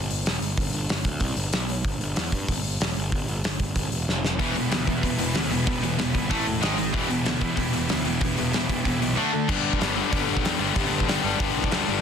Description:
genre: punk rock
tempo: 188 BPM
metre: 4/4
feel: straight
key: G major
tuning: A4 = 440 Hz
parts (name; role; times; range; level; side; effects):
- fuzz picked electric bass; bass; 0.0-12.0 s; E1 to G2; -29 LUFS; equal; overdrive
- loose indie drum kit; drums; 0.1-11.8 s; crash cymbal, hi-hat, kick drum, snare drum; -27 LUFS; equal; none
- distorted electric guitar; riff; 4.4-12.0 s; E2 to D4; -27 LUFS; left 10 dB; overdrive
- overdriven electric guitar; riff; 4.4-9.5 s; E2 to D4; -30 LUFS; right 13 dB; none
- thick fuzz guitar; riff; 4.4-12.0 s; G2 to E5; -28 LUFS; right 1 dB; distortion
room: little or no reverb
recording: dense, heavily limited modern master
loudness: -22 LUFS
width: side -7 dB against mid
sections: 0.0-9.5 A section; 9.5-12.0 B section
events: drum fill 4.1-4.4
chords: 0.0 G5; 1.2 C5; 1.5 N.C.; 1.8 Em; 4.1 N.C.; 4.4 Em; 6.3 A5; 6.6 Ab5; 6.9 Em; 9.2 D5; 9.5 G

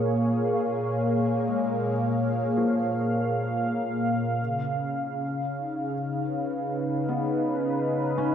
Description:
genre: ambient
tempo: 55 BPM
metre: 4/4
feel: straight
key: unclear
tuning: A4 = 440 Hz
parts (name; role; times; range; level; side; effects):
- warm analog pad; sustained chords; 0.0-8.3 s; A#2 to E#5; -24 LUFS; equal; chorus
- felt-muted upright piano; arpeggios; 0.0-8.3 s; E#3 to A#4; -36 LUFS; left 2 dB; tape echo
room: wet concert hall reverb, RT60 2.0 s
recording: none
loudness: -24 LUFS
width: side -8 dB against mid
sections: 0.0-8.3 A section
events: none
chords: 0.0 A#m7; 4.4 C#7

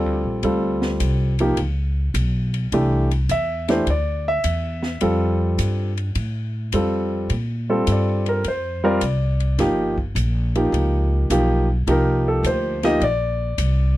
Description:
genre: jazz piano trio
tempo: 105 BPM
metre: 4/4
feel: swing 68% on 8ths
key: unclear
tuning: A4 = 440 Hz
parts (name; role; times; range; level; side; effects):
- warm grand piano; melody; 0.0-13.9 s; E3 to E5; -21 LUFS; equal; none
- upright bass; bass; 0.0-14.0 s; G1 to Bb2; -21 LUFS; equal; none
- open jazz drum kit; drums; 0.4-13.8 s; hi-hat, kick drum, ride cymbal, snare drum; -32 LUFS; left 1 dB; none
room: little or no reverb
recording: dry, close 1970s-style studio recording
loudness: -18 LUFS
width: side -15 dB against mid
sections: 0.0-14.0 A section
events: grand piano solo 0.0-14.0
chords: 0.4 Dm7; 1.6 Bsus2; 2.7 C69; 5.0 Fadd9; 7.3 Bbmaj9; 9.6 G7alt; 11.9 Cm9

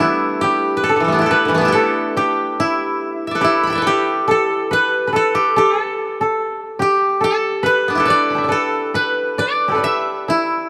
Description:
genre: japanese traditional, Japanese chamber music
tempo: 70 BPM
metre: 4/4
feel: rubato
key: A suspended pentatonic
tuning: A4 = 441 Hz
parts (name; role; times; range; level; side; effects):
- koto; melody; 0.0-10.7 s; D3 to B5; -19 LUFS; equal; none
- koto; second line; 0.0-10.7 s; E4 to B5; -22 LUFS; equal; none
room: wet plate reverb, RT60 2.8 s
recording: heard from further back in the room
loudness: -17 LUFS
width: mono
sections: 0.0-10.7 A section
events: none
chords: none

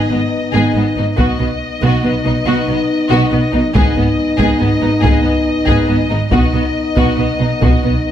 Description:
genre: cinematic, epic orchestral film score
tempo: 140 BPM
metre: 3/4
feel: straight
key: G# minor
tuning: A4 = 438 Hz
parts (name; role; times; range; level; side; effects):
- warm chamber violin section; melody; 0.0-8.1 s; D#5; -23 LUFS; left 3 dB; none
- rich symphonic violin section; second line; 0.0-7.9 s; B3 to G#4; -22 LUFS; left 3 dB; none
- warm symphonic viola section; accompaniment; 0.0-7.9 s; B3; -21 LUFS; right 2 dB; none
- mellow French horn section; sustained chords; 0.0-8.1 s; B3 to D#4; -18 LUFS; left 2 dB; none
- warm symphonic cello section; bass; 0.1-7.9 s; G#2 to B2; -20 LUFS; right 2 dB; none
- warm symphonic double bass section; bass; 0.1-7.9 s; G#1 to B1; -20 LUFS; right 3 dB; none
- taiko ensemble; drums; 1.2-8.0 s; none; -18 LUFS; equal; none
- cymbal swell; sound effects; 7.6-8.1 s; none; barely audible; none; none
room: moderate recital hall reverb, RT60 1.5 s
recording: none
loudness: -12 LUFS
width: side -10 dB against mid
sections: 0.0-8.1 A section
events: build-up 0.0-8.1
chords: 0.0 G#m; 1.2 B; 3.8 G#m; 6.3 B

